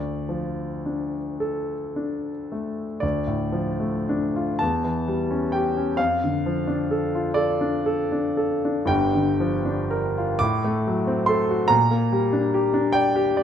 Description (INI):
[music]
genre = classical, romantic nocturne for solo piano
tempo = 35-48 BPM (dotted quarters)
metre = 12/8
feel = rubato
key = D minor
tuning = A4 = 438 Hz
[part]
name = clear concert grand piano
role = solo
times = 0.0-13.4 s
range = G1 to D6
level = -21 LUFS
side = equal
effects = none
[sound]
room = moderate recital hall reverb, RT60 1.3 s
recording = none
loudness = -21 LUFS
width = side -8 dB against mid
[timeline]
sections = 0.0-3.0 A section; 3.0-13.4 B section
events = none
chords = 0.0 Dm; 4.6 C#dim/E; 6.0 Dm/F; 8.9 Gm7; 10.4 F#dim/A; 11.7 Gm/Bb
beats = 1.40 | 3.03 4.60 5.99 7.37 | 8.89 10.40 11.72 12.97